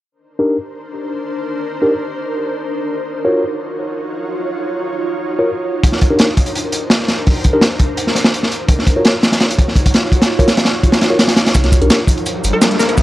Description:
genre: drum and bass, jungle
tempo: 168 BPM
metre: 4/4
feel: straight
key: unclear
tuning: A4 = 437 Hz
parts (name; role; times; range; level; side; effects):
- ethereal airy pad; sustained chords; 0.7-13.0 s; D4 to Db5; -21 LUFS; right 1 dB; ensemble chorus, built-in reverb
- mellow tine electric piano; stabs; 0.4-12.0 s; D4 to Db5; -18 LUFS; left 1 dB; low-pass filter, dub echo
- crunchy breakbeat drum kit; drums; 5.8-13.0 s; hi-hat, kick drum, snare drum; -12 LUFS; equal; none
- breakbeat sampler-style drum kit; drums; 11.5-13.0 s; hi-hat, shaker, snare drum; -24 LUFS; right 1 dB; high-pass filter on perc, high-pass filter on hats, high-pass filter on snare, high-pass filter on room
- riser; sound effects; 12.1-13.0 s; none; -21 LUFS; equal; none
- soft dub sub bass; bass; 11.6-13.0 s; G1 to C2; -15 LUFS; equal; tube saturation
- hollow square pluck; melody; 12.5-12.9 s; Bb4; -17 LUFS; left 2 dB; analog chorus, dub echo
room: studio reverb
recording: dry, gritty hardware recording, cassette tape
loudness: -13 LUFS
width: side -15 dB against mid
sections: 0.1-11.5 A section; 11.5-13.0 B section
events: filter sweep on tine electric piano 0.1-11.5, 11.5-13.0; build-up 11.5-13.0; riser 12.1-13.0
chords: 0.1 Cm9; 3.0 Ebm9; 5.8 Cm9; 8.7 Ebm9; 11.5 Cm9

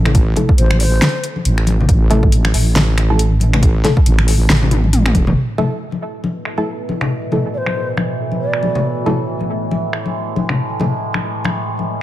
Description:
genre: deep dubstep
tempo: 138 BPM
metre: 4/4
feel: swing 57% on 16ths, half-time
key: A harmonic minor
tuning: A4 = 436 Hz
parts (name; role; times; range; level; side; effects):
- wobble bass; bass; 0.0-5.4 s; E1 to A1; -14 LUFS; equal; chorus
- deep house drum kit; drums; 0.1-11.6 s; finger snaps, hi-hat, snare drum, toms; -19 LUFS; equal; overdrive, low-pass filter on snare, low-pass filter on hats, low-pass filter on toms
- electronic kick drum; drums; 0.1-5.2 s; none; -14 LUFS; equal; overdrive
- congas; percussion; 0.1-11.9 s; none; -21 LUFS; left 3 dB; none
- filtered dub chord stab; stabs; 0.4-10.9 s; A3 to A4; -24 LUFS; right 1 dB; chorus, dub echo
- breathy mellow low ney; melody; 0.6-1.2, 7.5-8.8 s; C5 to D5; -24 LUFS; equal; dub echo
- overtone-sweeping drone; sustained chords; 6.2-12.0 s; A2 to G#3; -22 LUFS; right 1 dB; chorus, built-in reverb, phaser
room: light reverb, digital ambience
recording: none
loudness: -14 LUFS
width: side -14 dB against mid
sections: 0.0-5.4 A section; 5.4-12.0 B section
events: drum fill 4.7-5.4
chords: 0.0 A5

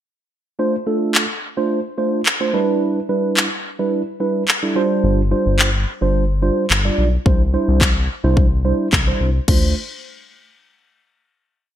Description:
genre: dance-pop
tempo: 108 BPM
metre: 4/4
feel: straight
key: D dorian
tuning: A4 = 440 Hz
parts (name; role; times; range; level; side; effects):
- mellow tine electric piano; accompaniment; 0.6-9.7 s; G3 to D5; -19 LUFS; right 2 dB; analog chorus, sidechain pumping
- pop drum kit; drums; 1.1-9.6 s; crash cymbal, handclaps, kick drum; -17 LUFS; left 1 dB; gated reverb
- round analog bass; bass; 5.0-9.7 s; G1 to D2; -18 LUFS; left 1 dB; sidechain pumping
room: light reverb, digital ambience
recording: bright 1980s-style digital production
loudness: -15 LUFS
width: side -11 dB against mid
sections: 0.6-9.5 verse; 9.5-11.7 final chord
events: none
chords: 0.6 Dm7; 2.5 Em7; 4.8 G7sus4; 7.3 Cadd9; 9.5 Dm7

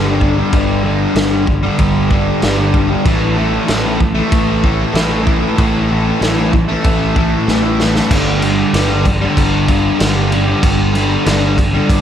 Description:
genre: rock, shoegaze and dream pop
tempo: 95 BPM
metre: 4/4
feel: straight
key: unclear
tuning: A4 = 440 Hz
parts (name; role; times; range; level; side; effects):
- fuzz guitar; riff; 0.0-12.0 s; G2 to A3; -15 LUFS; equal; distortion, analog chorus
- growling fingered electric bass; bass; 0.0-12.0 s; G1 to A1; -18 LUFS; equal; overdrive
- loose indie drum kit; drums; 0.2-12.0 s; crash cymbal, kick drum, snare drum; -17 LUFS; equal; none
room: wet lush hall reverb, RT60 1.9 s, studio ambience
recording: dreamy mix soaked in reverb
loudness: -12 LUFS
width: side -9 dB against mid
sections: 0.0-8.1 A section; 8.1-12.0 B section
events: drum fill 7.5-8.1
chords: 0.0 G5; 3.1 A5; 8.1 G5

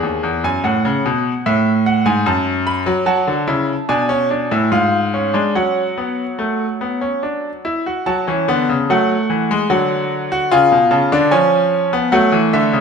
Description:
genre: classical, baroque-style 3-part fugue for grand piano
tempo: 74 BPM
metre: 3/4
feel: straight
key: F# minor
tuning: A4 = 440 Hz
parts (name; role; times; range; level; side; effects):
- bright grand piano; solo; 0.0-12.8 s; D#2 to B5; -14 LUFS; equal; none
room: wet recital hall reverb, RT60 1.4 s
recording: minimal, uncompressed stereo recording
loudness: -14 LUFS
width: side -6 dB against mid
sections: 0.0-8.1 A section; 8.1-12.8 B section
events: none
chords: 0.0 D#madd11; 0.6 F#m/A; 2.3 F#madd11; 3.1 F#m; 3.9 G#dim/B; 4.7 C#/G#; 5.5 F#5; 8.1 F#m; 9.7 D; 10.5 C#7; 12.1 F#m

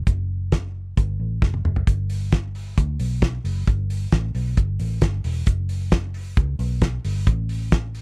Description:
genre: jangly indie pop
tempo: 133 BPM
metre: 4/4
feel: straight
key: unclear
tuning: A4 = 439 Hz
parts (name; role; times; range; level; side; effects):
- vintage muted fingered electric bass; bass; 0.0-8.0 s; E1 to D2; -24 LUFS; equal; none
- cloth-damped thuddy drum kit; drums; 0.1-8.0 s; hi-hat, kick drum, snare drum, toms; -19 LUFS; equal; none
room: little or no reverb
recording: dry, close 1970s-style studio recording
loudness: -20 LUFS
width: side -36 dB against mid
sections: 0.0-8.0 A section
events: drum fill 1.4-1.9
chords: none

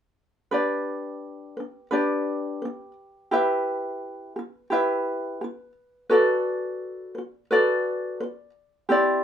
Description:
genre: pop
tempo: 86 BPM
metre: 4/4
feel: swing 60% on 16ths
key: G major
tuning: A4 = 440 Hz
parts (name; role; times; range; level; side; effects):
- ukulele; accompaniment; 0.5-9.2 s; C4 to E5; -23 LUFS; equal; none
room: moderate studio ambience, RT60 0.5 s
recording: minimal, uncompressed stereo recording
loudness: -23 LUFS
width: side -9 dB against mid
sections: 0.5-9.2 A section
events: none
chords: 0.5 G; 3.3 Em; 6.1 D6

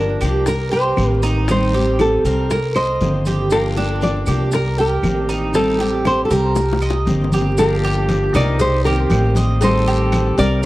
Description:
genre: latin, Cuban son and guajira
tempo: 118 BPM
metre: 4/4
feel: straight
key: unclear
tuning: A4 = 439 Hz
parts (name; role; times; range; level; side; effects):
- nylon-string guitar; melody; 0.0-10.6 s; G4 to D5; -20 LUFS; equal; tape echo
- fingerpicked steel-string acoustic guitar; accompaniment; 0.0-10.7 s; D3 to G4; -23 LUFS; left 2 dB; none
- Cuban tres; arpeggios; 0.0-10.7 s; D4 to Eb5; -23 LUFS; right 3 dB; tape echo
- upright bass; bass; 0.0-10.7 s; G1 to C2; -19 LUFS; equal; none
- claves; percussion; 0.2-10.4 s; none; -34 LUFS; right 3 dB; none
- congas; percussion; 0.2-10.7 s; none; -26 LUFS; left 1 dB; none
- guiro; percussion; 0.2-10.7 s; none; -37 LUFS; left 2 dB; none
- maracas; percussion; 0.2-10.7 s; none; -38 LUFS; right 3 dB; none
- bongos and cowbell; percussion; 0.5-10.6 s; none; -28 LUFS; left 5 dB; none
- warm trumpet; second line; 7.6-10.7 s; G4 to Bb4; -28 LUFS; left 2 dB; none
room: light reverb, studio ambience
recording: vinyl crackle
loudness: -15 LUFS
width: side -17 dB against mid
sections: 0.0-7.6 A section; 7.6-10.7 B section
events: drum fill 6.6-7.6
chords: 0.5 Am7b5; 2.5 Cm7; 3.5 Gm7; 4.5 Am7b5; 6.6 Cm7; 7.6 Gm7; 8.6 Am7b5

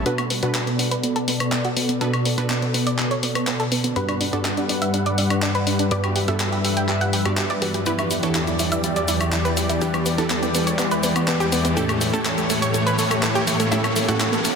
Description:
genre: progressive house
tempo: 123 BPM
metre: 4/4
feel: straight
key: B minor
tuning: A4 = 440 Hz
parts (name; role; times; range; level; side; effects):
- supersaw pad; sustained chords; 0.0-14.6 s; E2 to F#5; -23 LUFS; left 1 dB; low-pass filter
- wide unison pluck; stabs; 0.0-14.6 s; G2 to D5; -26 LUFS; right 2 dB; digital delay
- swell and riser; sound effects; 0.0-14.6 s; none; -30 LUFS; left 1 dB; none
- analog pluck; arpeggios; 0.1-14.5 s; A3 to G5; -26 LUFS; right 2 dB; chorus, digital delay
- deep house drum kit; drums; 0.1-14.5 s; cabasa, handclaps, hi-hat, woodblock; -25 LUFS; left 2 dB; low-pass filter on hats, low-pass filter on perc, soft clipping on snare, low-pass filter on snare, low-pass filter on room
room: moderate lush hall reverb, RT60 2.4 s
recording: dense, heavily limited modern master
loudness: -19 LUFS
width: side -6 dB against mid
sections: 0.1-14.6 A section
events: build-up 0.1-14.6; filter sweep on synth arpeggio sound 0.1-14.6; filter sweep on supersaw synth 0.1-14.6; riser 4.7-14.6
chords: 0.1 Bm7; 4.0 Gmaj7; 7.9 Em7; 11.8 A7

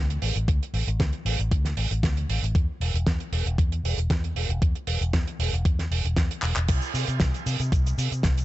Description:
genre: nu-disco, nu disco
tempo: 116 BPM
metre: 4/4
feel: straight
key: unclear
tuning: A4 = 435 Hz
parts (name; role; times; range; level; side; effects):
- fingered electric bass with an envelope filter; bass; 0.0-8.4 s; E1 to C3; -26 LUFS; equal; none
- damped 70s drum kit; drums; 0.1-8.4 s; crash cymbal, handclaps, hi-hat, shaker, snare drum; -29 LUFS; right 2 dB; none
- electronic kick drum; drums; 0.5-8.3 s; none; -24 LUFS; equal; none
room: little or no reverb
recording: nothing above 8.0 kHz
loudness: -23 LUFS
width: side -16 dB against mid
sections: 0.0-8.4 A section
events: drum fill 6.4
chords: none

